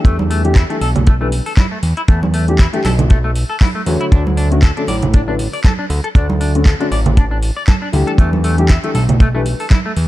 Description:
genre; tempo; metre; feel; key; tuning
nu-disco, nu disco; 118 BPM; 4/4; swing 56% on 16ths; D major; A4 = 437 Hz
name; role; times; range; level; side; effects
dark grand piano; accompaniment; 0.0-9.4 s; D3 to C#5; -20 LUFS; left 2 dB; sidechain pumping, low-pass filter, ping-pong delay
fat analog bass; bass; 0.0-10.1 s; A1 to E2; -16 LUFS; equal; tube saturation, sidechain pumping
kick drum; drums; 0.0-9.8 s; none; -10 LUFS; equal; none
semi-hollow electric guitar; riff; 0.1-9.9 s; A3 to D5; -23 LUFS; left 2 dB; lush chorus, low-pass filter, ping-pong delay
house drum kit; drums; 0.1-10.1 s; handclaps, hi-hat; -26 LUFS; equal; overdrive
congas; percussion; 0.2-9.8 s; none; -21 LUFS; right 4 dB; none
room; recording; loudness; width
studio ambience; dark, warm production; -12 LUFS; side -16 dB against mid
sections
0.0-10.1 A section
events
none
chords
0.1 A7sus4; 4.1 Dmaj7; 8.2 A7sus4

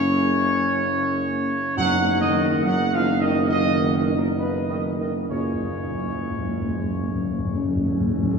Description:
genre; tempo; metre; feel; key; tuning
classical; 68 BPM; 4/4; straight; unclear; A4 = 438 Hz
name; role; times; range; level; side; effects
dark trumpet section; melody; 0.0-8.4 s; A#4 to F#5; -25 LUFS; right 1 dB; none
clear trombone section; sustained chords; 0.0-8.4 s; A#2 to F#3; -29 LUFS; right 2 dB; none
mellow French horn section; sustained chords; 0.0-8.4 s; G#3 to E#4; -27 LUFS; left 3 dB; none
mellow tuba; bass; 0.0-8.4 s; F#1; -25 LUFS; right 3 dB; none
timpani; percussion; 1.8-8.4 s; F#2; -28 LUFS; left 2 dB; none
room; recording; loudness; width
wet cathedral reverb, RT60 4.8 s; small room ambience; -20 LUFS; side -5 dB against mid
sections
0.0-8.4 A section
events
timpani fill 5.3-8.4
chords
0.0 F#; 1.8 B/F#; 5.3 C#6/F#

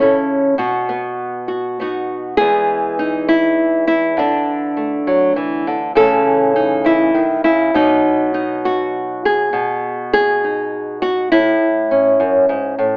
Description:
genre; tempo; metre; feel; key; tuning
folk, solo fingerstyle acoustic guitar; 67 BPM (dotted quarters); 6/8; straight; E major; A4 = 437 Hz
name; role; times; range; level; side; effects
nylon-string guitar; solo; 0.0-13.0 s; E2 to A4; -13 LUFS; equal; none
room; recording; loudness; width
moderate large studio reverb, RT60 1.2 s; AM radio sound; -13 LUFS; side -32 dB against mid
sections
0.0-2.4 A section; 2.4-13.0 B section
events
none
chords
0.0 A/C#; 0.6 B; 2.4 E; 4.2 Dsus2; 5.9 A/C#; 7.7 B; 11.3 A

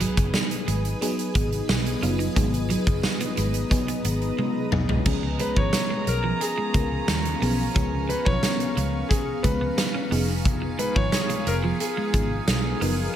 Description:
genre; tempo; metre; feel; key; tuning
1980s-style pop; 89 BPM; 4/4; straight; unclear; A4 = 440 Hz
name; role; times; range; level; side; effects
FM electric piano with soft pad layer; accompaniment; 0.0-13.2 s; E#3 to A#4; -29 LUFS; left 2 dB; chorus, phaser
shimmering ambient pad; sustained chords; 0.0-13.2 s; B3 to D#6; -35 LUFS; equal; chorus, built-in reverb
electric guitar at the edge of break-up; riff; 0.0-13.0 s; E#3 to D#4; -32 LUFS; right 4 dB; lush chorus, digital delay
vintage muted fingered electric bass; bass; 0.0-13.1 s; F1 to D#2; -27 LUFS; equal; none
huge arena drum kit; drums; 0.0-13.0 s; crash cymbal, hi-hat, kick drum, snare drum, toms; -25 LUFS; right 1 dB; gated reverb
warm horn section; stabs; 5.1-13.2 s; C#4 to A#5; -33 LUFS; right 3 dB; none
clear concert grand piano; melody; 5.4-12.8 s; G#4 to C#5; -29 LUFS; left 3 dB; none
room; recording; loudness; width
light reverb, small room reverb; none; -22 LUFS; side -10 dB against mid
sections
0.0-5.1 A section; 5.1-13.2 B section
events
drum fill 4.4-5.1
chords
0.0 G#m7; 5.1 C#7; 10.1 Fm7b5

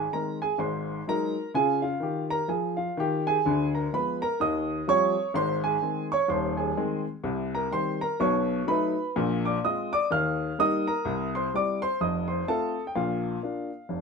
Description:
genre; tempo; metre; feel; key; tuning
jazz, stride piano; 126 BPM; 4/4; swing 60% on 8ths; Ab major; A4 = 442 Hz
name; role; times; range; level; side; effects
clear upright piano; solo; 0.0-14.0 s; Eb1 to F6; -25 LUFS; equal; none
room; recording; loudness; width
moderate studio reverb, RT60 0.6 s; minimal, uncompressed stereo recording; -25 LUFS; side -4 dB against mid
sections
0.0-14.0 A section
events
none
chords
0.0 Ab; 0.6 Ab7; 1.6 Db; 3.5 Ddim7; 4.4 Eb13; 5.4 Ab; 7.3 Cm7; 8.2 B7; 9.2 Bb9; 10.1 Eb; 11.1 C7; 12.0 F7; 13.0 Bb

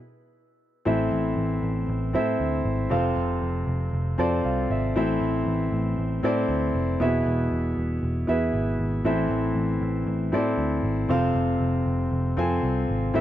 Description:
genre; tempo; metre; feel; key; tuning
piano-driven pop; 117 BPM; 4/4; straight; A harmonic minor; A4 = 436 Hz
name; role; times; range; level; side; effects
warm concert grand piano; accompaniment; 0.9-13.2 s; A2 to A5; -24 LUFS; left 1 dB; none
vintage muted picked electric bass; bass; 0.9-13.2 s; E1 to A2; -27 LUFS; right 1 dB; none
room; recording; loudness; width
small room ambience; dry, close 1970s-style studio recording; -22 LUFS; side -12 dB against mid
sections
0.9-13.2 A section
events
stop 0.0-0.9; grand piano fill 3.9-5.0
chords
0.0 N.C.; 0.9 Am; 2.9 F; 5.0 Am; 7.0 E; 9.1 Am; 11.1 F

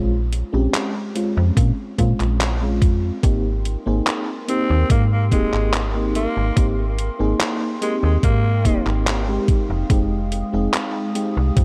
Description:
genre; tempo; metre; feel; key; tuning
vaporwave; 72 BPM; 4/4; straight; Ab major; A4 = 440 Hz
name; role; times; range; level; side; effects
FM electric piano with soft pad layer; accompaniment; 0.0-11.6 s; Ab3 to Ab4; -26 LUFS; equal; tremolo, subtle chorus, tape echo
slap-like FM bass; bass; 0.0-11.6 s; Eb1 to Bb2; -22 LUFS; equal; tube saturation
detuned 8-bit digital drum machine; drums; 0.3-11.6 s; handclaps, hi-hat; -28 LUFS; equal; gated reverb
electronic kick drum; drums; 1.6-11.6 s; none; -20 LUFS; equal; none
warbly tape-like pad; sustained chords; 3.5-11.6 s; Ab3 to Eb6; -34 LUFS; equal; chorus, built-in reverb
raspy alto saxophone; melody; 4.5-8.9 s; Ab3 to C4; -29 LUFS; equal; tape echo
room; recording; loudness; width
light reverb; none; -20 LUFS; mono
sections
0.0-11.6 A section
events
none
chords
0.0 Bbm9; 3.2 Abmaj9; 9.5 Fm9

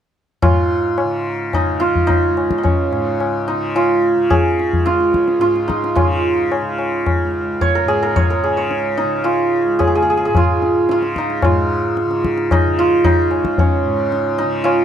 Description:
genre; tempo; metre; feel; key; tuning
indian classical, Hindustani; 110 BPM; 5/4; straight; Db raga bhupali; A4 = 441 Hz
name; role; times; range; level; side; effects
santur; melody; 0.4-14.8 s; Db4 to Db5; -16 LUFS; right 2 dB; none
tanpura; drone; 0.4-14.8 s; Db2 to Db3; -25 LUFS; left 2 dB; none
tabla; percussion; 0.4-14.8 s; none; -19 LUFS; left 3 dB; none
room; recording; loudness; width
light reverb; dry, close 1970s-style studio recording; -14 LUFS; side -9 dB against mid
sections
0.4-11.4 A section; 11.4-14.8 B section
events
speeding up 0.4-14.8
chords
none

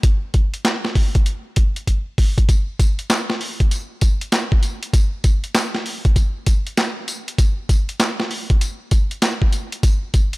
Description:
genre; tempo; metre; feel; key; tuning
R&B; 98 BPM; 4/4; swing 64% on 16ths; none; none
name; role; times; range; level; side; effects
boom bap sampler-style drum kit; drums; 0.0-10.4 s; handclaps, hi-hat, kick drum, snare drum, tambourine; -16 LUFS; equal; none
room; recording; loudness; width
little or no reverb; none; -17 LUFS; side -22 dB against mid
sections
0.0-2.5 A section; 2.5-10.4 B section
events
drum fill 1.9-2.5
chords
none

